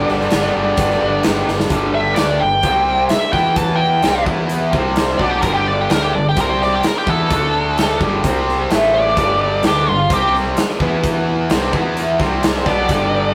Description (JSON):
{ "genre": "classic rock", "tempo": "129 BPM", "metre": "4/4", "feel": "straight", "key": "G major", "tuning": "A4 = 440 Hz", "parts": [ { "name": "bluesy overdriven lead guitar", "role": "melody", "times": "0.0-13.3 s", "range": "F4 to A5", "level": "-20 LUFS", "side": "equal", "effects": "wah, distortion" }, { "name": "picked twelve-string acoustic guitar", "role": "accompaniment", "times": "0.0-13.3 s", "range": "G2 to E5", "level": "-28 LUFS", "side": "equal", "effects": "none" }, { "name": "string machine, cellos", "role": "sustained chords", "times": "0.0-13.3 s", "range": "none", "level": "barely audible", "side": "none", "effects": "none" }, { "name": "overdriven electric guitar", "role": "riff", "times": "0.0-13.3 s", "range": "G2 to E4", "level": "-23 LUFS", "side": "equal", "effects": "spring reverb" }, { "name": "tight distorted guitar", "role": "riff", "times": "0.0-13.3 s", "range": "G2 to G4", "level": "-26 LUFS", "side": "equal", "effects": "distortion" }, { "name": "growling fingered electric bass", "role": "bass", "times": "0.0-13.3 s", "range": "G1 to E2", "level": "-27 LUFS", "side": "equal", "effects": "overdrive" }, { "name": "big rock drum kit", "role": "drums", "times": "0.1-13.0 s", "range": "hi-hat, kick drum, snare drum", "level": "-23 LUFS", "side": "equal", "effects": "none" } ], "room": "moderate stone room reverb, RT60 1.0 s", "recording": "rough rehearsal-room recording", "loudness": "-16 LUFS", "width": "mono", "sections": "0.0-1.7 A section; 1.7-13.3 B section", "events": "drum fill 1.5; lead electric guitar solo 1.7-13.3", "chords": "0.0 G; 2.6 C5; 3.1 G; 3.3 E5; 4.0 G; 4.3 E5; 4.7 C5; 5.2 G; 6.4 C5; 6.8 G; 7.3 D5; 8.0 G; 8.2 C5; 8.7 A5; 9.2 G; 10.1 C5; 10.6 G; 10.8 E5; 11.5 G; 11.7 E5; 12.2 C5; 12.7 G", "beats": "0.32 0.78 1.25 | 1.71 2.18 2.65 3.11 | 3.58 4.04 4.51 4.98 | 5.44 5.91 6.38 6.84 | 7.31 7.77 8.24 8.71 | 9.17 9.64 10.10 10.57 | 11.04 11.50 11.97 12.43 | 12.90" }